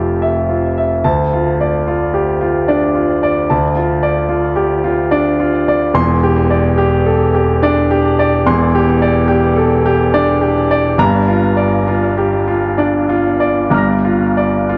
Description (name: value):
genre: neoclassical minimalist piano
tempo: 62-76 BPM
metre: 3/4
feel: rubato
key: D minor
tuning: A4 = 440 Hz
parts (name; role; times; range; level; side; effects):
- warm concert grand piano; solo; 0.0-14.8 s; E1 to Bb6; -14 LUFS; equal; tape echo
room: moderate spring reverb, RT60 2.3 s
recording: cassette tape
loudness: -14 LUFS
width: mono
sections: 0.0-14.8 A section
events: none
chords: 0.0 Fmaj7; 1.1 Dm; 6.0 Cadd9/E; 11.0 Gm7